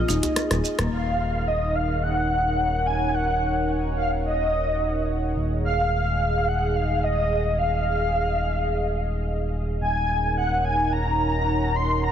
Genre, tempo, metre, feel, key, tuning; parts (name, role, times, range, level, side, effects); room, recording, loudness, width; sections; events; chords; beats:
organic downtempo; 108 BPM; 4/4; straight; Eb minor; A4 = 440 Hz
breathy flute-like synth lead; melody; 0.0-12.1 s; Eb5 to C6; -25 LUFS; equal; ensemble chorus, vintage 12-bit sampler grit, ping-pong delay
warm analog pad; sustained chords; 0.0-12.1 s; Eb4 to Gb5; -30 LUFS; right 1 dB; chorus
marimba with hard mallets; arpeggios; 0.0-0.9 s; Bb3 to Eb5; -28 LUFS; left 2 dB; ping-pong delay
smooth gliding synth bass; bass; 0.0-12.1 s; Eb1; -26 LUFS; equal
deep house drum kit; drums; 0.1-0.9 s; hi-hat, rim click, shaker; -30 LUFS; equal
djembe; percussion; 0.1-0.9 s; -36 LUFS; right 1 dB
moderate huge ambient reverb, RT60 4.5 s; heavily compressed radio sound, multiband compression; -21 LUFS; side -9 dB against mid
0.9-12.1 A section
drum fill 0.4-0.9; band accent 0.8
0.0 Fm7/Eb (rootless); 0.9 Ebm7; 5.4 Fm7/Eb; 9.8 Ebm7
0.36 | 0.92 1.48 2.03 2.59 | 3.14 3.70 4.25 4.81 | 5.36 5.92 6.47 7.03 | 7.59 8.14 8.70 9.25 | 9.81 10.36 10.92 11.47 | 12.03